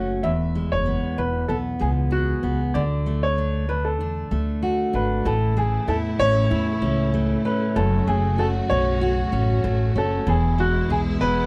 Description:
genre	acoustic pop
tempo	96 BPM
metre	4/4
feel	swing 55% on 16ths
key	A major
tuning	A4 = 437 Hz
part	warm upright piano	melody	0.0-11.5 s	F#4 to E5	-28 LUFS	equal	none
part	fingerpicked steel-string acoustic guitar	accompaniment	0.0-11.5 s	E2 to G#4	-26 LUFS	equal	none
part	upright bass	bass	0.0-11.5 s	E1 to E2	-27 LUFS	equal	none
part	warm studio string section	sustained chords	5.2-11.5 s	B2 to F#4	-36 LUFS	equal	none
room	light reverb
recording	none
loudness	-22 LUFS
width	mono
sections	0.0-5.3 A section; 5.3-11.5 B section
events	none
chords	0.2 E; 2.7 D; 5.3 A; 7.8 F#m; 10.3 E

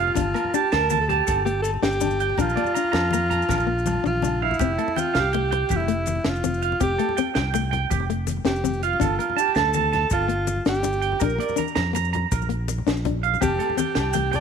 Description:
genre	highlife guitar band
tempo	109 BPM (dotted quarters)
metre	12/8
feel	straight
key	F major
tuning	A4 = 440 Hz
part	clear alto saxophone	melody	0.0-14.4 s	E4 to D5	-25 LUFS	equal	none
part	clean electric guitar	arpeggios	0.0-14.4 s	G4 to Bb5	-26 LUFS	right 12 dB	slapback echo
part	fingered electric bass	bass	0.0-14.4 s	F1 to F2	-26 LUFS	equal	none
part	congas	percussion	0.1-14.4 s	none	-32 LUFS	left 9 dB	none
part	nylon-string guitar	accompaniment	0.2-14.4 s	A3 to D4	-29 LUFS	left 13 dB	none
part	compact cocktail drum kit	drums	0.2-14.4 s	hi-hat, kick drum, snare drum, toms	-29 LUFS	equal	none
part	agogo bells	percussion	0.2-4.4, 13.4-14.4 s	none	-33 LUFS	left 6 dB	none
part	maracas	percussion	0.2-14.2 s	none	-38 LUFS	left 18 dB	none
room	light reverb, small room ambience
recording	1960s-style stereo with parts hard left and right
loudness	-20 LUFS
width	side -7 dB against mid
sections	0.0-4.6 A section; 4.6-14.4 A section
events	drum fill 3.5-4.6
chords	0.2 Gmadd9; 2.4 Bb; 4.6 Fadd9; 9.0 Gmadd9; 11.2 Bb; 13.4 Fadd9

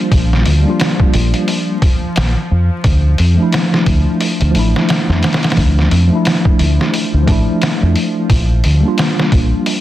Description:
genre	trip hop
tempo	88 BPM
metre	4/4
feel	swing 59% on 16ths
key	D minor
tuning	A4 = 438 Hz
part	mellow tine electric piano	accompaniment	0.0-9.8 s	F3 to F4	-16 LUFS	equal	medium stereo tremolo, low-pass filter, tape echo
part	bowed-like drone	texture	0.0-9.8 s	F3	-26 LUFS	equal	built-in reverb
part	deep dub fingered electric bass	bass	0.1-9.5 s	A1 to F2	-13 LUFS	equal	none
part	trip hop sampler-style drum kit	drums	0.1-9.8 s	hi-hat, kick drum, snare drum	-16 LUFS	equal	vintage 12-bit sampler grit, small room ambience
room	light reverb, digital ambience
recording	dense, heavily limited modern master, vinyl crackle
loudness	-11 LUFS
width	side -14 dB against mid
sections	0.0-9.8 A section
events	filter sweep on tine electric piano 0.0-9.8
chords	0.0 Bb6; 2.8 Dmadd9; 8.3 Bb6

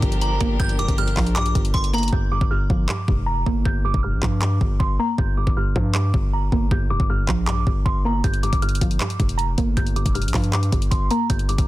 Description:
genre	hip hop, trap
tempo	157 BPM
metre	4/4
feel	half-time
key	G minor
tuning	A4 = 439 Hz
part	delicate synth tine bell	melody	0.0-11.7 s	Bb5 to G6	-28 LUFS	right 2 dB	chorus, phaser, low-pass filter, tape echo
part	mallet-like synth pluck	accompaniment	0.0-11.7 s	G2 to Bb3	-26 LUFS	right 1 dB	chorus, low-pass filter
part	warm chamber string section	sustained chords	0.0-2.1 s	F3 to Bb4	-30 LUFS	left 2 dB	none
part	hard-hitting 808-style bass	bass	0.0-11.7 s	F1 to G2	-22 LUFS	equal	none
part	trap drum kit	drums	0.0-11.7 s	handclaps, hi-hat, kick drum	-23 LUFS	equal	none
room	digital ambience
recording	dense, heavily limited modern master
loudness	-18 LUFS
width	side -16 dB against mid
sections	0.0-2.1 A section; 2.1-11.7 B section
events	hi-hats muted 2.1-8.2; filter sweep 2.1-11.7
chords	0.0 Gm7

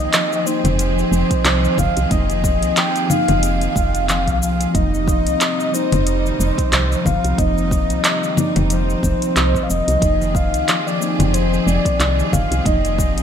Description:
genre	organic downtempo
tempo	91 BPM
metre	4/4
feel	swing 57% on 16ths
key	F minor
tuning	A4 = 440 Hz
part	breathy flute-like synth lead	melody	0.0-13.2 s	C5 to G5	-22 LUFS	left 1 dB	wide subtle chorus, ping-pong delay
part	muted felt-like synth keys	accompaniment	0.0-13.2 s	F3 to Eb4	-26 LUFS	right 4 dB	chorus, sidechain pumping
part	rich symphonic string section	sustained chords	0.0-13.2 s	C3 to Eb5	-27 LUFS	right 1 dB	sidechain pumping
part	concert harp	arpeggios	0.0-13.2 s	Eb3 to F4	-24 LUFS	left 5 dB	none
part	woody FM bass	bass	0.0-13.2 s	F1 to C2	-20 LUFS	equal	none
part	afro-pop drum kit	drums	0.1-13.2 s	cabasa, congas, handclaps, hi-hat	-20 LUFS	left 1 dB	gated reverb
part	electronic kick drum	drums	1.3-13.1 s	none	-21 LUFS	equal	none
room	light reverb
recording	bright 1980s-style digital production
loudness	-15 LUFS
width	side -8 dB against mid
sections	0.0-13.2 A section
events	none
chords	0.0 Fm11; 4.7 Cm7/F; 10.0 Fm11

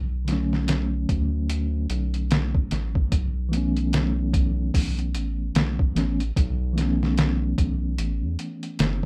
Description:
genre	trip hop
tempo	74 BPM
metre	4/4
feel	swing 59% on 16ths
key	unclear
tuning	A4 = 442 Hz
part	round analog bass	bass	0.0-9.1 s	F#1 to E2	-28 LUFS	equal	none
part	mellow tine electric piano	accompaniment	0.2-9.0 s	D3 to C#4	-30 LUFS	equal	tremolo
part	trip hop sampler-style drum kit	drums	0.3-9.1 s	hi-hat, kick drum, snare drum	-27 LUFS	equal	overdrive
room	little or no reverb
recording	rough home demo mix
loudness	-24 LUFS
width	mono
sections	0.0-9.1 A section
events	none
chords	0.0 Bm7; 3.1 Aadd9

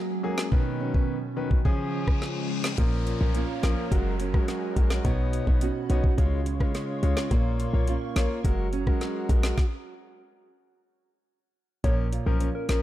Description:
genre	dancehall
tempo	106 BPM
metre	4/4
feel	straight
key	Bb phrygian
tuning	A4 = 440 Hz
part	hollow soft pad	sustained chords	0.0-9.6 s	D#3 to Db6	-36 LUFS	equal	ensemble chorus, sidechain pumping
part	nylon-string guitar	arpeggios	0.0-12.8 s	Bb2 to Gb4	-32 LUFS	right 5 dB	tape echo
part	bright grand piano	accompaniment	0.2-12.8 s	D#3 to C#5	-33 LUFS	left 5 dB	sidechain pumping
part	island pop drum kit	drums	0.4-12.8 s	hi-hat, kick drum, rim click, snare drum	-25 LUFS	equal	none
part	reverse cymbal and downlifter	sound effects	1.8-7.3 s	none	-41 LUFS	left 2 dB	none
part	short 808-style bass	bass	2.8-12.8 s	Gb1 to Db2	-26 LUFS	equal	none
part	soft struck synth lead	melody	11.8-12.8 s	Bb4 to Db5	-33 LUFS	left 1 dB	chorus, tape echo
room	little or no reverb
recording	dark, warm production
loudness	-23 LUFS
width	side -14 dB against mid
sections	0.0-2.8 A section; 2.8-11.8 B section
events	reverse cymbal 1.8-2.8; stop 9.6-11.8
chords	0.0 Gbadd9; 0.5 Badd9; 1.7 Db; 2.8 Bbm; 3.9 Gbadd9; 5.0 Badd9; 6.2 Db; 7.3 Bbm; 8.4 Gbadd9; 9.6 N.C.; 11.8 Bbm

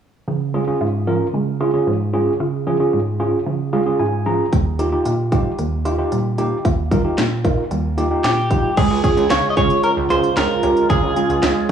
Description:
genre	synth-pop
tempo	113 BPM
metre	4/4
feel	straight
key	unclear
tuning	A4 = 440 Hz
part	tine electric piano	accompaniment	0.3-11.7 s	Eb2 to Bb5	-19 LUFS	right 1 dB	cassette tape
part	resonant blip pluck	arpeggios	0.3-11.7 s	F3 to F5	-25 LUFS	right 3 dB	phaser, cassette tape, analog delay
part	house drum kit	drums	4.5-11.7 s	crash cymbal, hi-hat, kick drum, snare drum	-21 LUFS	right 1 dB	cassette tape
part	direct-recorded clean electric guitar	melody	8.2-11.7 s	G4 to Eb5	-19 LUFS	equal	lush chorus, cassette tape, analog delay
part	chorused pulse-width pad	sustained chords	8.8-11.7 s	Db3 to F4	-21 LUFS	right 4 dB	cassette tape
part	chorused synth bass	bass	8.8-11.7 s	Db2 to Db3	-22 LUFS	right 1 dB	transformer saturation
room	wet spring reverb, RT60 2.0 s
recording	home recording on cassette, studio ambience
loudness	-16 LUFS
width	side -8 dB against mid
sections	0.3-8.8 A section; 8.8-11.7 B section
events	tine electric piano fill 3.5-4.5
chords	0.3 Db; 4.5 Ebadd9; 8.8 Db

